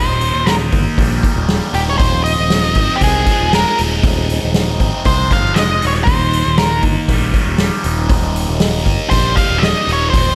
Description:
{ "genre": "psychedelic rock", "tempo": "118 BPM", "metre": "4/4", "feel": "straight", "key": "Eb major", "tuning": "A4 = 440 Hz", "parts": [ { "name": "octave-fuzz lead guitar", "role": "melody", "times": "0.0-10.3 s", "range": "G4 to F5", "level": "-20 LUFS", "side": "equal", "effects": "distortion, slapback echo" }, { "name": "fuzz guitar", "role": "riff", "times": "0.0-10.3 s", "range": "Eb2 to Eb4", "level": "-22 LUFS", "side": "equal", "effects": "distortion, phaser" }, { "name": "picked electric bass", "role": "bass", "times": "0.0-10.3 s", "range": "Eb1 to C2", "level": "-21 LUFS", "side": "equal", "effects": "none" }, { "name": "soft-mallet drum kit", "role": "drums", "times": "0.2-10.3 s", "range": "hi-hat, kick drum, snare drum", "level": "-19 LUFS", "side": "equal", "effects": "none" } ], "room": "light reverb", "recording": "none", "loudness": "-15 LUFS", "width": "mono", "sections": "0.0-10.3 A section", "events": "lead electric guitar solo 0.0-10.3", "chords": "0.0 Eb; 2.0 Fm7/Eb; 6.1 Eb" }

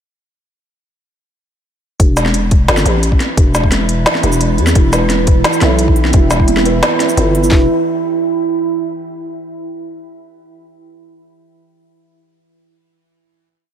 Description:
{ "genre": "half-time drum and bass", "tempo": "174 BPM", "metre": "4/4", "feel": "half-time", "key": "E minor", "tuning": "A4 = 442 Hz", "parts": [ { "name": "growling 808-style bass", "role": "bass", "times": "2.0-7.7 s", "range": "E1 to E2", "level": "-14 LUFS", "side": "equal", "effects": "none" }, { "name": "organic electronic drum kit", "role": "drums", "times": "2.0-7.5 s", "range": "hi-hat, shaker, snare drum", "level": "-16 LUFS", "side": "equal", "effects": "overdrive" }, { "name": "trap drum kit", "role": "drums", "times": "2.0-7.6 s", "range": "handclaps, kick drum, snare drum", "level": "-11 LUFS", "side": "equal", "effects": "none" }, { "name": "metallic inharmonic drone", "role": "texture", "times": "3.2-7.5 s", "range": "E3 to E4", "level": "-24 LUFS", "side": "equal", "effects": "chorus, built-in reverb" }, { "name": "deep dark ambient pad", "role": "sustained chords", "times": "5.8-8.9 s", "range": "E4 to B5", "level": "-18 LUFS", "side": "right 5 dB", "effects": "chorus, built-in reverb, sidechain pumping" }, { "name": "felt-muted upright piano", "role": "arpeggios", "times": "4.8-7.7 s", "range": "B3 to E5", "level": "-19 LUFS", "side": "right 3 dB", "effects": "diffuse ambient delay" } ], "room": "light reverb, digital ambience", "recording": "none", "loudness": "-10 LUFS", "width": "side -9 dB against mid", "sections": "2.0-7.5 drop; 7.5-8.9 final chord", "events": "drop 2.0-7.5", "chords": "2.0 Em" }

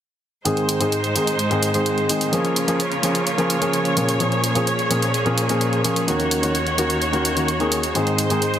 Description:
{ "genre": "EDM, festival progressive house", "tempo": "128 BPM", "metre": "4/4", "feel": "straight", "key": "Bb minor", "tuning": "A4 = 439 Hz", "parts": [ { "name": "dark baby grand piano", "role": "accompaniment", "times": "0.4-8.4 s", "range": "Ab2 to Ab4", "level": "-20 LUFS", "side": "left 1 dB", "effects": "ping-pong delay" }, { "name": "clear chamber string section", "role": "sustained chords", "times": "0.5-8.6 s", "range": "Eb2 to Db5", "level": "-23 LUFS", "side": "right 1 dB", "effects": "none" }, { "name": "electronic hi-hat", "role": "drums", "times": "0.5-8.6 s", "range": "none", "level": "-25 LUFS", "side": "right 1 dB", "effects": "studio reverb" } ], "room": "moderate lush hall reverb, RT60 1.6 s, small room ambience", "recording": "heavily compressed radio sound", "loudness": "-18 LUFS", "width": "side -10 dB against mid", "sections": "0.5-8.6 A section", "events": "none", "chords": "0.5 Ab; 2.3 Bbm7; 6.1 Ebm7; 8.0 Ab" }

